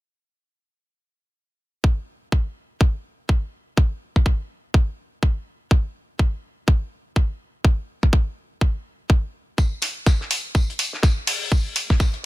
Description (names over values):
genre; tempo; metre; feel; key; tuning
bass house; 124 BPM; 4/4; swing 59% on 16ths; none; none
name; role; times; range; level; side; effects
electronic kick drum; drums; 1.8-12.1 s; none; -17 LUFS; equal; none
cloth-damped thuddy drum kit; drums; 9.6-12.2 s; hi-hat, snare drum, tambourine; -30 LUFS; left 4 dB; high-pass filter on hats, high-pass filter on snare, high-pass filter on perc, high-pass filter on room
electronic hi-hat; drums; 9.8-11.9 s; none; -23 LUFS; right 1 dB; none
room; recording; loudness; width
little or no reverb; dense, heavily limited modern master; -20 LUFS; side -18 dB against mid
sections
1.8-12.3 A section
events
none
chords
none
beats
| 1.84 2.32 2.81 3.29 | 3.77 4.26 4.74 5.23 | 5.71 6.19 6.68 7.16 | 7.65 8.13 8.61 9.10 | 9.58 10.06 10.55 11.03 | 11.52 12.00